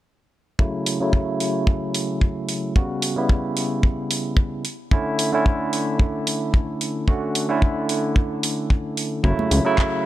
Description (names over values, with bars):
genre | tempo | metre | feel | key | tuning
nu-disco, nu disco | 111 BPM | 4/4 | swing 54% on 16ths | unclear | A4 = 440 Hz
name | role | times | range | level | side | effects
barky tine electric piano | accompaniment | 0.6-10.1 s | C#3 to F#4 | -23 LUFS | right 1 dB | medium stereo tremolo, sidechain pumping, low-pass filter, digital delay
kick drum | drums | 0.6-9.9 s | none | -18 LUFS | equal | none
pop drum kit | drums | 0.9-9.9 s | handclaps, hi-hat | -26 LUFS | right 2 dB | none
fat analog bass | bass | 9.2-9.6 s | F#1 to C#2 | -19 LUFS | equal | none
congas | percussion | 9.4-9.5 s | none | -28 LUFS | right 2 dB | none
room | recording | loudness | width
little or no reverb | none | -20 LUFS | side -14 dB against mid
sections
0.6-10.1 A section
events
filter sweep on tine electric piano 0.6-10.1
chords
0.6 F#m7; 2.8 C#m7b5; 4.6 Dmaj7sus2; 9.2 F#m7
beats
| 0.59 1.14 1.68 2.22 | 2.76 3.30 3.84 4.38 | 4.92 5.46 6.00 6.54 | 7.08 7.62 8.16 8.70 | 9.24 9.78